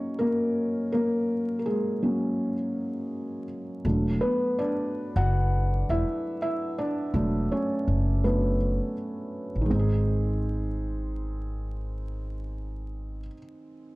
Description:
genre	lo-fi hip hop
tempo	82 BPM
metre	4/4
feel	swing 59% on 16ths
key	unclear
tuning	A4 = 440 Hz
part	felt-muted upright piano	accompaniment	0.0-14.0 s	D#3 to F#5	-27 LUFS	equal	cassette tape
part	upright bass	bass	3.8-13.3 s	E1 to A1	-26 LUFS	equal	none
room	moderate spring reverb, RT60 1.1 s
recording	dark, warm production, vinyl crackle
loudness	-25 LUFS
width	side -21 dB against mid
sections	0.0-9.7 A section; 9.7-12.6 B section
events	break 0.0-3.8; felt piano solo 0.0-9.7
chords	0.0 G#9sus4; 3.8 E9sus4; 9.7 G#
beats	0.18 | 0.91 1.65 2.38 3.11 | 3.84 4.57 5.30 6.04 | 6.77 7.50 8.23 8.96 | 9.69 10.43 11.16 11.89

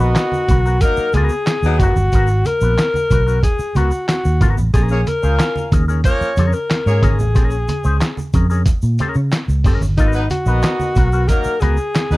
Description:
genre	funk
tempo	92 BPM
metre	4/4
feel	straight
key	unclear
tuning	A4 = 440 Hz
part	breathy alto saxophone	melody	0.0-12.2 s	Eb4 to Db5	-20 LUFS	left 2 dB	none
part	warm horn section	second line	0.0-12.2 s	F3 to F5	-24 LUFS	equal	none
part	electric guitar with an envelope filter	accompaniment	0.0-12.2 s	Cb4 to C5	-26 LUFS	left 4 dB	analog chorus
part	vintage muted fingered electric bass	bass	0.0-12.2 s	Gb1 to Db3	-16 LUFS	equal	none
part	lo-fi sampler-style drum kit	drums	0.2-12.1 s	handclaps, hi-hat, kick drum, snare drum	-17 LUFS	equal	none
part	egg shaker	percussion	0.2-12.2 s	none	-42 LUFS	left 2 dB	none
part	congas	percussion	0.3-12.1 s	none	-26 LUFS	right 3 dB	none
room	light reverb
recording	dark, warm production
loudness	-14 LUFS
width	side -19 dB against mid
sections	0.0-12.2 A section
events	none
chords	0.0 Abm9; 4.7 Bbm7; 10.0 Abm9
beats	0.15 0.81 1.46 | 2.12 2.77 3.43 4.08 | 4.74 5.39 6.04 6.70 | 7.36 8.01 8.66 9.32 | 9.98 10.63 11.29 11.95

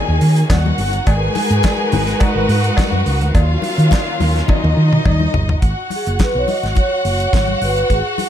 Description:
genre	disco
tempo	105 BPM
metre	4/4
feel	straight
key	G# dorian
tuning	A4 = 441 Hz
part	warm studio violin section	second line	0.0-8.3 s	D#4 to G#5	-21 LUFS	left 1 dB	none
part	clear studio string section	sustained chords	0.0-5.6 s	D#3 to B4	-22 LUFS	equal	none
part	hollow-body short-scale fingered electric bass	bass	0.1-8.0 s	F#1 to D#3	-16 LUFS	equal	none
part	damped 70s drum kit	drums	0.2-8.3 s	handclaps, hi-hat, kick drum, snare drum, toms	-18 LUFS	equal	none
part	congas	percussion	0.2-8.3 s	none	-24 LUFS	left 6 dB	none
part	cowbell	percussion	0.5-5.2 s	none	-28 LUFS	left 1 dB	none
part	vibraphone with soft mallets	melody	6.0-8.2 s	G#4 to D#5	-20 LUFS	right 2 dB	none
room	little or no reverb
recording	dark, warm production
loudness	-13 LUFS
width	side -10 dB against mid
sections	0.0-5.6 A section; 5.6-8.3 B section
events	drum fill 4.5-5.6; vibraphone solo 5.6-8.3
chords	0.0 D#m7; 1.1 G#m9; 3.3 D#m7; 5.6 G#7(no3)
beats	0.50 | 1.07 1.64 2.21 2.78 | 3.35 3.91 4.48 5.05 | 5.62 6.19 6.76 7.33 | 7.90

